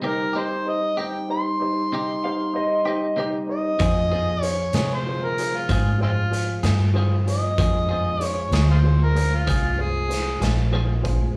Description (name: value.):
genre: slow blues.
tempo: 64 BPM (dotted quarters).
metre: 12/8.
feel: straight.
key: unclear.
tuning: A4 = 441 Hz.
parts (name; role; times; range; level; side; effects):
clean electric guitar; accompaniment; 0.0-10.9 s; C3 to Ab4; -33 LUFS; equal; tremolo, slapback echo.
warm upright piano; accompaniment; 0.0-11.3 s; Eb4 to Eb5; -33 LUFS; equal; slapback echo.
mellow tonewheel organ; sustained chords; 0.0-11.4 s; F3 to Ab4; -35 LUFS; equal; slow rotary speaker.
overdriven harmonica; melody; 0.1-10.4 s; Ab3 to C6; -28 LUFS; equal; slapback echo.
electric guitar through a small old amp; second line; 2.2-3.3 s; Eb5 to F5; -29 LUFS; equal; analog chorus, slapback echo, analog delay.
vintage muted fingered electric bass; bass; 3.8-11.3 s; Bb1 to C3; -24 LUFS; equal; none.
raw garage drum kit; drums; 3.8-11.2 s; hi-hat, kick drum, snare drum; -31 LUFS; equal; none.
room: light reverb.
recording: live gig heard through the venue's PA, club reverb, small room ambience.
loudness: -22 LUFS.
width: mono.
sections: 0.0-11.4 A section.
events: none.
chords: 0.0 Cm; 3.8 Fm.